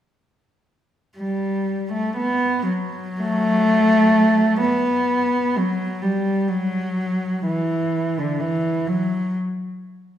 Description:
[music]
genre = classical, free, expressive piece for unaccompanied cello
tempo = 22-45 BPM (dotted quarters)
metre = 6/8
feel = rubato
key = unclear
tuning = A4 = 440 Hz
[part]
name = warm cello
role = solo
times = 1.2-9.3 s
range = D3 to B3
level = -18 LUFS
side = equal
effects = none
[sound]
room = wet recital hall reverb, RT60 1.6 s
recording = recorded in a church or concert hall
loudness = -18 LUFS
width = side -10 dB against mid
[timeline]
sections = 1.2-4.6 A section; 4.6-10.2 B section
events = none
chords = none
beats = | 1.18 2.65 | 4.62 6.02 | 7.45 8.87

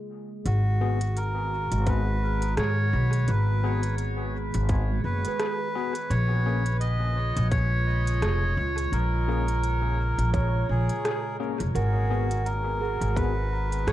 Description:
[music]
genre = ambient dub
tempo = 85 BPM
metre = 4/4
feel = swing 57% on 16ths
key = G# dorian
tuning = A4 = 440 Hz
[part]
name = warbly tape-like pad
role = sustained chords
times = 0.0-13.9 s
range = A#2 to G#4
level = -35 LUFS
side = right 1 dB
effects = chorus, built-in reverb, cassette tape
[part]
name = melodica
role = melody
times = 0.5-13.9 s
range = F#4 to D#5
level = -31 LUFS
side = right 1 dB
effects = cassette tape, tape echo
[part]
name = upright bass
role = bass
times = 0.5-13.9 s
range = E#1 to G#2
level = -25 LUFS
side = equal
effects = none
[part]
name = organic electronic drum kit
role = drums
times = 0.5-13.9 s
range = hi-hat, rim click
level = -33 LUFS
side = right 1 dB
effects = overdrive, cassette tape, dub echo
[part]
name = tine electric piano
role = stabs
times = 0.8-13.3 s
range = A#3 to G#4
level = -36 LUFS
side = left 10 dB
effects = medium stereo tremolo, vintage 12-bit sampler grit, cassette tape, dub echo
[part]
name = electronic kick drum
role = drums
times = 1.9-13.3 s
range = none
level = -28 LUFS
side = equal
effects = overdrive, cassette tape
[part]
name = handpan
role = arpeggios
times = 4.9-13.9 s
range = G#3 to C#5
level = -36 LUFS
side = right 10 dB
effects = cassette tape, tape echo
[sound]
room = little or no reverb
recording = home recording on cassette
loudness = -23 LUFS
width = side -13 dB against mid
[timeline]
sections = 0.5-13.9 A section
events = break 0.0-0.5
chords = 0.5 G#m7; 6.1 A#m7; 11.8 G#m7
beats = | 0.46 1.17 1.87 2.58 | 3.28 3.99 4.70 5.40 | 6.11 6.81 7.52 8.22 | 8.93 9.64 10.34 11.05 | 11.75 12.46 13.17 13.87

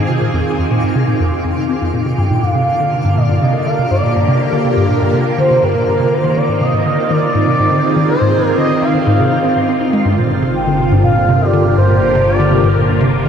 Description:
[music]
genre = ambient, sequencer-driven space music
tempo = 122 BPM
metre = 4/4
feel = straight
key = G phrygian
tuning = A4 = 440 Hz
[part]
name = phased string machine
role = sustained chords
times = 0.0-13.3 s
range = D3 to Ab4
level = -17 LUFS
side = equal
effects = ensemble chorus, phaser
[part]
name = hollow square pluck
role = riff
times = 0.0-13.3 s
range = F2 to Eb4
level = -16 LUFS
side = equal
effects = chorus, tape echo
[part]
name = twinkling granular texture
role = texture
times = 0.0-10.1 s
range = F4 to D6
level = -28 LUFS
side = left 1 dB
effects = built-in reverb
[part]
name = expressive synth lead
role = melody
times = 2.1-12.7 s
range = Bb4 to Ab5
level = -17 LUFS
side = right 1 dB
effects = lush chorus, tape echo
[part]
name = fat analog bass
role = bass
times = 10.1-13.3 s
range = G1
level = -18 LUFS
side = equal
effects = none
[sound]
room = wet huge ambient reverb, RT60 8.1 s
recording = in a vast, echoing space, cassette tape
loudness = -11 LUFS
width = side -8 dB against mid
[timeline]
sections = 0.0-10.1 A section; 10.1-13.3 B section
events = filter sweep on synth arpeggio sound 0.0-10.1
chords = 0.0 Fm7; 2.2 Gm7; 6.1 Ab6; 10.1 Gm7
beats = | 0.22 0.71 1.20 1.70 | 2.19 2.68 3.17 3.66 | 4.15 4.65 5.14 5.63 | 6.12 6.61 7.11 7.60 | 8.09 8.58 9.07 9.56 | 10.05 10.55 11.04 11.53 | 12.02 12.51 13.01

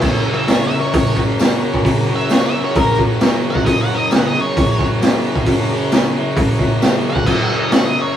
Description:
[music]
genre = garage rock duo or trio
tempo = 133 BPM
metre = 4/4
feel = straight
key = F# mixolydian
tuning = A4 = 440 Hz
[part]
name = combo organ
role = sustained chords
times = 0.0-8.2 s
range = F#4 to E5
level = -26 LUFS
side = left 2 dB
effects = spring reverb
[part]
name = fuzz guitar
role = riff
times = 0.0-8.2 s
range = F#2 to F#3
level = -19 LUFS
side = left 1 dB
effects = distortion
[part]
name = raw garage drum kit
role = drums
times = 0.0-7.8 s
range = crash cymbal, hi-hat, kick drum, snare drum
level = -16 LUFS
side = equal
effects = none
[part]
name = octave-fuzz lead guitar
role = melody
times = 0.3-8.2 s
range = A#4 to F#5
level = -21 LUFS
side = equal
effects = distortion
[part]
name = tambourine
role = percussion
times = 0.5-7.8 s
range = none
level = -35 LUFS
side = left 3 dB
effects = none
[sound]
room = moderate small room reverb, RT60 0.5 s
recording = rough rehearsal-room recording, small room ambience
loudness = -13 LUFS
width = side -10 dB against mid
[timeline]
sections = 0.0-8.2 A section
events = lead electric guitar solo 0.0-8.2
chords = 0.0 F#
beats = | 0.04 0.49 0.94 1.40 | 1.85 2.30 2.76 3.21 | 3.66 4.11 4.56 5.01 | 5.47 5.92 6.37 6.82 | 7.27 7.72

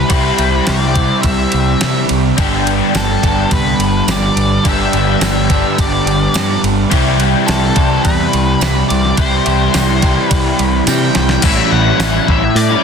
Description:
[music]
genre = rock, shoegaze and dream pop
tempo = 106 BPM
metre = 4/4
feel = straight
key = unclear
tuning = A4 = 439 Hz
[part]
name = octave-fuzz lead guitar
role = melody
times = 0.0-12.8 s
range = A4 to G5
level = -20 LUFS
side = left 2 dB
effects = distortion, tape echo
[part]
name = overdriven electric guitar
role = riff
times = 0.0-12.8 s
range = G2 to G4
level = -17 LUFS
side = left 14 dB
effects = ensemble chorus
[part]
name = overdriven semi-hollow guitar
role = riff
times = 0.0-12.8 s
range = G2 to G4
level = -17 LUFS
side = right 13 dB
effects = reverse reverb
[part]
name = growling picked electric bass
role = bass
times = 0.0-12.7 s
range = G1 to C3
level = -17 LUFS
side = equal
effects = overdrive
[part]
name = crisp 8-bit digital drum machine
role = drums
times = 0.1-12.7 s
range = crash cymbal, hi-hat, kick drum, ride cymbal, snare drum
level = -18 LUFS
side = equal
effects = none
[part]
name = tambourine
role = percussion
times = 2.9-12.1 s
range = none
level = -27 LUFS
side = right 16 dB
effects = none
[sound]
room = digital ambience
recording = dense, heavily limited modern master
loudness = -11 LUFS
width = side -6 dB against mid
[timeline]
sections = 0.0-11.4 A section; 11.4-12.8 B section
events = drum fill 10.9-11.4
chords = 0.0 Cmaj7; 2.4 G; 6.9 C; 11.4 A5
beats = | 0.10 0.67 1.24 1.81 | 2.37 2.94 3.51 4.08 | 4.65 5.21 5.78 6.35 | 6.91 7.48 8.05 8.61 | 9.18 9.74 10.31 10.88 | 11.44 12.00 12.57

